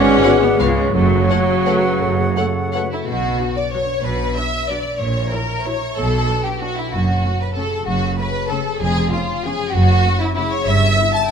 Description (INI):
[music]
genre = classical, orchestral ballroom waltz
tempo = 159-208 BPM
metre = 3/4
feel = rubato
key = F# minor, B minor from 3.1 s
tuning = A4 = 437 Hz
[part]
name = bright silver concert flute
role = second line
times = 0.0-2.9 s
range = E#5 to F#5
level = -25 LUFS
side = left 2 dB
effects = none
[part]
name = dark clarinet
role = second line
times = 0.0-3.1 s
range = G#4 to C#5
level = -27 LUFS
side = equal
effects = none
[part]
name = dark cor anglais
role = second line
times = 0.0-2.9 s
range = C#5 to D5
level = -25 LUFS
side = right 4 dB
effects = none
[part]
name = mellow bassoon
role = accompaniment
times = 0.0-2.9 s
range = B2 to C#3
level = -25 LUFS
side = right 2 dB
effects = none
[part]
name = rich studio viola section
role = accompaniment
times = 0.0-11.1 s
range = F#3 to E4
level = -21 LUFS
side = right 2 dB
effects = none
[part]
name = concert harp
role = arpeggios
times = 0.0-11.3 s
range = E#2 to F#5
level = -24 LUFS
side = left 10 dB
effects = none
[part]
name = rich studio cello section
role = bass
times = 0.0-10.9 s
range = E#2 to C#3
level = -23 LUFS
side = right 2 dB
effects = none
[part]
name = rich studio double bass section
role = bass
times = 0.0-10.9 s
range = E#1 to C#2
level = -22 LUFS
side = right 3 dB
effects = none
[part]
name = rich studio violin section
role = melody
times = 0.2-11.3 s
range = E4 to A5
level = -26 LUFS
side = left 3 dB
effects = none
[part]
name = rich studio violin section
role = second line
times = 0.2-11.3 s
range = E4 to A5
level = -22 LUFS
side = left 1 dB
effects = none
[part]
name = mellow French horn section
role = sustained chords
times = 0.2-2.9 s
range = A3 to F#4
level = -27 LUFS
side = left 4 dB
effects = none
[sound]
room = moderate concert hall reverb, RT60 1.9 s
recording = none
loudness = -16 LUFS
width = side -7 dB against mid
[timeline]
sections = 0.0-3.1 A section; 3.1-11.3 B section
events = none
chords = 0.0 G#m7b5; 0.6 C#7; 0.9 F#m; 3.1 Bm; 5.0 F#7/A#; 6.0 Bm; 6.9 F#m; 8.8 C#7/E#; 9.7 F#m; 10.7 Em/G